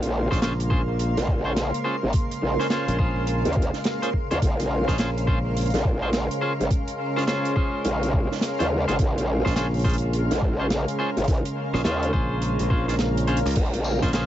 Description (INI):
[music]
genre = glitch hop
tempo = 105 BPM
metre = 4/4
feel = swing 63% on 16ths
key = Bb minor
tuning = A4 = 440 Hz
[part]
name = warm analog pad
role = sustained chords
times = 0.0-14.3 s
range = Db3 to Db4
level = -31 LUFS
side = right 1 dB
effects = chorus, vintage 12-bit sampler grit, sidechain pumping
[part]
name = growl bass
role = bass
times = 0.0-14.0 s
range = Ab1 to Eb2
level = -24 LUFS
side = equal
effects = chorus, overdrive
[part]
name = modern studio drum kit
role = drums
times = 0.0-14.3 s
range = crash cymbal, hi-hat, snare drum, tambourine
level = -30 LUFS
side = right 2 dB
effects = none
[part]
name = granular cloud pad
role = texture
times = 0.0-14.3 s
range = Bb4 to C6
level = -31 LUFS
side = right 1 dB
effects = built-in reverb, sidechain pumping
[part]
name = clean electric guitar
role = stabs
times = 0.3-14.2 s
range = Db4 to C5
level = -29 LUFS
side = left 1 dB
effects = sidechain pumping, tape echo
[part]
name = modern bright fingered electric bass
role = bass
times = 0.3-5.7, 9.5-14.3 s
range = Bb1 to Db2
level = -25 LUFS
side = equal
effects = tube saturation
[part]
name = electronic kick drum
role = drums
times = 0.3-14.1 s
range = none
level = -24 LUFS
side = equal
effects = none
[sound]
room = little or no reverb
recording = vinyl crackle, nothing above 7.7 kHz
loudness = -21 LUFS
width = side -12 dB against mid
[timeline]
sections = 0.0-14.3 A section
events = kick drops out 13.0-13.6; drum fill 13.3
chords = 0.0 Bbm9